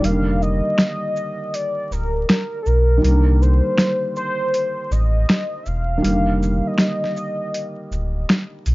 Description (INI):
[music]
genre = lo-fi hip hop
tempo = 80 BPM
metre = 4/4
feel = swing 65% on 16ths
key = unclear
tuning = A4 = 437 Hz
[part]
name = warm velvety synth lead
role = melody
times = 0.0-8.2 s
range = A4 to F5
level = -24 LUFS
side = equal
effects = chorus, low-pass filter, tape echo
[part]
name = felt-muted upright piano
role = accompaniment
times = 0.0-8.7 s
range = D3 to Bb3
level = -24 LUFS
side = right 1 dB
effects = cassette tape, low-pass filter
[part]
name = sub bass with octave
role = bass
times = 0.0-8.7 s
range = D1 to C2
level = -18 LUFS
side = equal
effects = none
[part]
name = dusty soul sampler-style drum kit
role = drums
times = 0.0-8.7 s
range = finger snaps, hi-hat, shaker, snare drum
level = -18 LUFS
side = equal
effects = overdrive
[sound]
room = light reverb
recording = vinyl crackle, nothing above 7.5 kHz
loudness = -17 LUFS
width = side -20 dB against mid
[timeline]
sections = 0.0-8.7 A section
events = break 0.0-8.7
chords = 0.0 F13sus4; 3.0 Cm9; 6.0 F13sus4